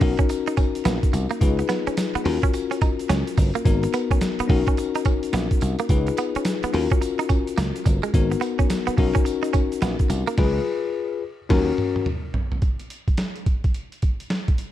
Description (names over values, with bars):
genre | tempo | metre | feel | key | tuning
R&B, new jack swing | 107 BPM | 4/4 | swing 63% on 16ths | unclear | A4 = 438 Hz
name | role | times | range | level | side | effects
bell-like tine electric piano | accompaniment | 0.0-12.1 s | B3 to B4 | -25 LUFS | left 8 dB | none
direct-recorded clean electric guitar | riff | 0.0-10.4 s | G#3 to D#4 | -29 LUFS | right 8 dB | analog chorus
slap bass | bass | 0.0-11.7 s | G1 to D#2 | -24 LUFS | right 1 dB | none
boom bap sampler-style drum kit | drums | 0.0-14.7 s | crash cymbal, hi-hat, kick drum, snare drum, tambourine, toms | -22 LUFS | right 1 dB | none
egg shaker | percussion | 0.2-10.4 s | none | -46 LUFS | right 8 dB | none
room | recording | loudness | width
digital ambience | dark, warm production | -20 LUFS | side -12 dB against mid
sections
0.0-12.6 A section; 12.6-14.7 B section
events
band accent 10.4-12.6; drum fill 11.5-12.6; tine electric piano fill 11.5-12.6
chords
0.0 Bmaj7; 1.4 C#7; 2.3 D#m7; 3.7 G#m7; 4.5 Bmaj7; 5.9 C#7; 6.7 D#m7; 8.1 G#m7; 9.0 Bmaj7; 10.4 C#7; 11.2 D#m7; 12.1 N.C.